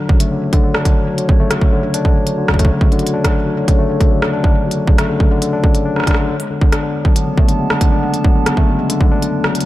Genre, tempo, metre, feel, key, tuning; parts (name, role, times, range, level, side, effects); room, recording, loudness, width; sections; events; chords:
IDM; 138 BPM; 4/4; straight; D major; A4 = 440 Hz
warbly tape-like pad; sustained chords; 0.0-9.7 s; B3 to A5; -24 LUFS; equal; chorus, built-in reverb
tine electric piano; arpeggios; 0.0-9.7 s; C#3 to D4; -17 LUFS; left 2 dB; tape echo
electronic kick drum; drums; 0.1-9.1 s; -13 LUFS; right 1 dB; distortion
industrial drum kit; drums; 0.2-9.7 s; hi-hat, rim click; -22 LUFS; equal
light reverb, digital ambience; dark, warm production; -12 LUFS; side -16 dB against mid
0.0-9.7 A section
0.0 Dmaj7; 6.3 Bm13/C#